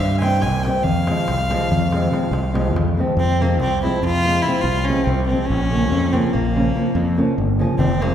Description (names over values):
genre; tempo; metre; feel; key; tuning
balkan folk, Balkan wedding band; 286 BPM (eighths); 11/8; straight; F harmonic minor; A4 = 436 Hz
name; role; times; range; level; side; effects
rich fiddle; melody; 0.0-8.1 s; Bb3 to Ab5; -23 LUFS; equal; none
growling fingered electric bass; bass; 0.0-8.1 s; F1 to G2; -20 LUFS; equal; overdrive
nylon-string guitar; accompaniment; 0.2-8.1 s; C3 to Db4; -22 LUFS; equal; none
darbuka; percussion; 0.2-2.9, 7.8-8.1 s; none; -25 LUFS; left 1 dB; none
room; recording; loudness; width
wet scoring stage reverb, RT60 1.9 s; heard from further back in the room; -16 LUFS; side -9 dB against mid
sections
0.0-3.2 A section; 3.2-8.1 B section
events
none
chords
0.0 C; 0.9 Fm; 5.5 Bbm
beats
0.01 0.22 0.43 0.65 | 0.86 1.07 1.28 1.49 1.70 1.91 2.12 2.33 2.54 2.75 2.97 | 3.18 3.39 3.60 3.81 4.02 4.23 4.44 4.65 4.86 5.07 5.28 | 5.49 5.70 5.91 6.12 6.33 6.53 6.74 6.95 7.16 7.37 7.58 | 7.79 8.00